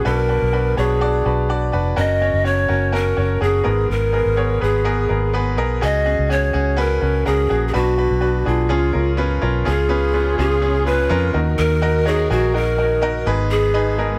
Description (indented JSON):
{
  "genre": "piano-driven pop",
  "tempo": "125 BPM",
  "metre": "4/4",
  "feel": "straight",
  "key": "unclear",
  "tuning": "A4 = 440 Hz",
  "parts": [
    { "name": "breathy mellow large pan pipes", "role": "melody", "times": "0.0-14.0 s", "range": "E#4 to D#5", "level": "-23 LUFS", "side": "equal", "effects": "none" },
    { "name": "bright upright piano", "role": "accompaniment", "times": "0.0-14.2 s", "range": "G#2 to D5", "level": "-24 LUFS", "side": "equal", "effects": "none" },
    { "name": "vintage muted fingered electric bass", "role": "bass", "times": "0.0-14.2 s", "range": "E#1 to E#2", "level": "-22 LUFS", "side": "equal", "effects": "none" },
    { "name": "warm studio string section", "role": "sustained chords", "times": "9.7-14.2 s", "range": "C#3 to A#4", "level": "-31 LUFS", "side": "equal", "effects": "none" }
  ],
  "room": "light reverb",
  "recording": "none",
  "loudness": "-18 LUFS",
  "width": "mono",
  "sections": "0.0-9.7 A section; 9.7-14.2 B section",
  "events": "none",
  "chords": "0.0 Bm; 2.0 F#; 3.7 G#madd9; 5.8 C#sus4; 7.7 Bm; 8.7 C#; 11.3 D#m; 13.3 G#m"
}